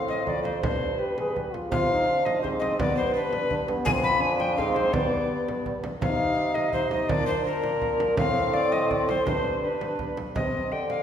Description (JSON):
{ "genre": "classical, renaissance-style consort dance", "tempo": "167 BPM", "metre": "3/4", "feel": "straight", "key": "unclear", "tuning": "A4 = 440 Hz", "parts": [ { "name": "alto recorder", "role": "melody", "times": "0.0-11.0 s", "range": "Bb4 to B5", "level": "-27 LUFS", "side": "left 2 dB", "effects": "none" }, { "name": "clear trombone", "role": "accompaniment", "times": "0.0-11.0 s", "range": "B3 to Ab4", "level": "-30 LUFS", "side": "left 1 dB", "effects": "none" }, { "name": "mellow bassoon", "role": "bass", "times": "0.0-11.0 s", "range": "F2 to D3", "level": "-29 LUFS", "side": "right 2 dB", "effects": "none" }, { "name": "frame drum", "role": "percussion", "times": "0.1-11.0 s", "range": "none", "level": "-31 LUFS", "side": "right 2 dB", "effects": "none" } ], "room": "wet recital hall reverb, RT60 1.7 s", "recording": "recorded in a church or concert hall", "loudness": "-23 LUFS", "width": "side -9 dB against mid", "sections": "0.0-1.7 A section; 1.7-10.3 A section", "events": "none", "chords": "0.0 F/A; 0.6 G; 1.7 Cm; 2.8 G; 3.9 Fm; 4.9 G; 6.0 Cm; 7.1 Bb; 8.2 F/A; 9.3 G; 10.3 Cm", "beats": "0.26 | 0.62 0.98 1.34 | 1.71 2.07 2.43 | 2.79 3.14 3.50 | 3.86 4.21 4.57 | 4.93 5.30 5.66 | 6.02 6.38 6.74 | 7.10 7.46 7.81 | 8.17 8.53 8.89 | 9.25 9.62 9.98 | 10.35 10.71" }